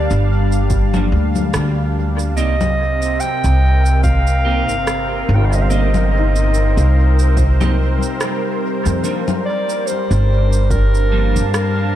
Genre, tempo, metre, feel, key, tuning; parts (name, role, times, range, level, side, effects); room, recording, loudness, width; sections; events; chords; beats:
ambient dub; 72 BPM; 4/4; swing 57% on 16ths; A4 = 440 Hz
mellow clarinet; melody; 0.0-12.0 s; Bb4 to G5; -22 LUFS; right 1 dB; dub echo
warm analog pad; sustained chords; 0.0-12.0 s; C3 to A5; -23 LUFS; equal; chorus
concert harp; arpeggios; 0.0-11.0 s; G3 to D6; -27 LUFS; left 2 dB; analog delay
upright bass; bass; 0.0-11.9 s; G1 to G2; -15 LUFS; equal; tube saturation
electronic shaker, congas and rim click; drums; 0.1-11.7 s; -25 LUFS; left 3 dB; dub echo
electronic kick drum; drums; 0.7-10.9 s; -19 LUFS; equal; overdrive
clean electric guitar; stabs; 0.9-11.4 s; F3 to G4; -28 LUFS; right 4 dB; analog chorus, dub echo
light reverb, studio reverb; -14 LUFS; side -12 dB against mid
0.0-12.0 A section
0.0 Gm7; 2.4 Cm7; 9.0 Gm7
0.70 1.54 | 2.37 3.21 4.04 4.87 | 5.71 6.54 7.37 8.21 | 9.04 9.87 10.71 11.54